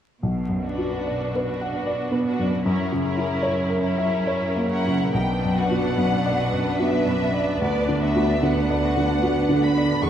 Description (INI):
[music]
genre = classical, romantic movement for piano and orchestra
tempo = 73 BPM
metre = 3/4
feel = uneven beats, rubato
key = B minor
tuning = A4 = 440 Hz
[part]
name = warm baby grand piano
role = melody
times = 0.2-10.1 s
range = B1 to F#5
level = -23 LUFS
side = equal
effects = none
[part]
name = rich symphonic cello section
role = bass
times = 0.2-10.1 s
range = D2 to B2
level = -29 LUFS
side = right 2 dB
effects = none
[part]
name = rich symphonic violin section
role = melody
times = 0.6-10.1 s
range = A#4 to C#6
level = -29 LUFS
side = left 3 dB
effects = none
[part]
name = rich symphonic violin section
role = second line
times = 0.6-10.1 s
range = B3 to B4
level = -30 LUFS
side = equal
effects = none
[part]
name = rich symphonic viola section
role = accompaniment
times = 0.6-10.1 s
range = B3 to D4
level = -29 LUFS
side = right 3 dB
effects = none
[part]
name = rich symphonic double bass section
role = bass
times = 5.2-10.1 s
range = E1 to D2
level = -32 LUFS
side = right 2 dB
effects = none
[sound]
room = wet scoring stage reverb, RT60 1.6 s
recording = minimal, uncompressed stereo recording, vinyl crackle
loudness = -20 LUFS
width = side -9 dB against mid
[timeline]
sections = 0.2-5.1 A section; 5.1-10.1 B section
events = none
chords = 0.2 Bm; 2.6 F#7; 5.1 Bm; 7.6 Bm/D